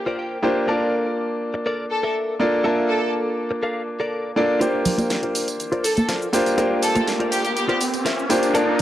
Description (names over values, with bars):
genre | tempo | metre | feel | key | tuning
nu-disco, nu disco | 122 BPM | 4/4 | straight | unclear | A4 = 440 Hz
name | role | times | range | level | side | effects
bright concert grand piano | accompaniment | 0.0-8.8 s | Bb3 to A5 | -21 LUFS | equal | analog delay
direct-recorded clean electric guitar | riff | 0.1-8.7 s | F4 to G5 | -26 LUFS | left 1 dB | analog chorus, low-pass filter
clear studio violin section | melody | 1.9-7.8 s | G4 to A4 | -26 LUFS | equal | analog delay
pop drum kit | drums | 4.6-8.8 s | cabasa, hi-hat, snare drum | -28 LUFS | equal | high-pass filter on hats, high-pass filter on perc, high-pass filter on snare
tambourine and congas | percussion | 4.6-8.7 s | none | -26 LUFS | right 1 dB | none
riser | sound effects | 6.2-8.8 s | none | -28 LUFS | equal | none
room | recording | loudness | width
light reverb | dry, gritty hardware recording | -19 LUFS | side -12 dB against mid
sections
0.0-4.6 A section; 4.6-8.8 B section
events
clean electric guitar fill 0.0-0.7; build-up 4.6-8.8; filter sweep on clean electric guitar 4.6-8.8; riser 6.2-8.8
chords
0.0 C9sus4; 0.7 Bbmaj7; 4.6 C9sus4